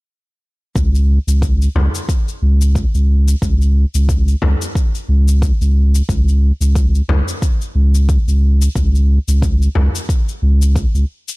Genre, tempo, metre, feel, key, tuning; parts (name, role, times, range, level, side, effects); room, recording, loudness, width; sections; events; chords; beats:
organic downtempo; 90 BPM; 4/4; swing 56% on 16ths; A4 = 440 Hz
warm sub bass; bass; 0.8-11.0 s; C#2; -12 LUFS; equal; tube saturation
cabasa; drums; 0.8-11.4 s; -30 LUFS; left 6 dB
electronic kick drum; drums; 0.8-10.9 s; -17 LUFS; equal
frame drum; percussion; 1.8-9.9 s; -22 LUFS; left 1 dB
little or no reverb; blown-out, overdriven recording, overdrive; -12 LUFS; side -24 dB against mid
0.8-11.4 A section
| 0.76 1.42 2.09 2.75 | 3.42 4.09 4.75 5.42 | 6.09 6.75 7.42 8.09 | 8.76 9.42 10.09 10.76